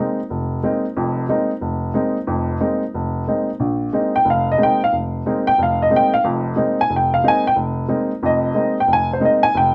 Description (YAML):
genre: jazz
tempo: 182 BPM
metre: 4/4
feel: swing 62% on 8ths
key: unclear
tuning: A4 = 439 Hz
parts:
  - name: warm upright piano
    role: solo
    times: 0.0-9.7 s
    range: F1 to Ab5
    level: -19 LUFS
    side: equal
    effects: none
room: moderate studio reverb, RT60 0.6 s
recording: none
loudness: -19 LUFS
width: mono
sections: 0.0-3.6 A section; 3.6-9.7 B section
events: none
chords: 0.0 Bb9sus4